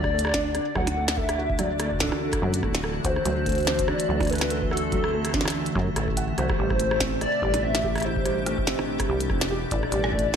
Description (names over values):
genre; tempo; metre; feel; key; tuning
IDM; 144 BPM; 4/4; swing 56% on 16ths; unclear; A4 = 440 Hz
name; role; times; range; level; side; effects
warbly nostalgic lead; melody; 0.0-10.4 s; A4 to F#5; -28 LUFS; left 1 dB; ensemble chorus, tape echo
icy glass pad; sustained chords; 0.0-10.4 s; B2 to G4; -30 LUFS; equal; chorus, built-in reverb
deep acid bass; bass; 0.0-10.4 s; D1 to F#2; -29 LUFS; equal; none
electronic kick drum; drums; 0.0-10.2 s; none; -31 LUFS; equal; none
glitchy drum kit; drums; 0.0-10.4 s; hi-hat, percussion blips, rim click, snare drum; -29 LUFS; equal; none
felt-muted upright piano; arpeggios; 0.1-10.4 s; F#3 to F#5; -31 LUFS; right 2 dB; ping-pong delay
room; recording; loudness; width
light reverb; none; -22 LUFS; side -7 dB against mid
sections
0.0-10.4 A section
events
none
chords
0.0 D; 6.6 Am7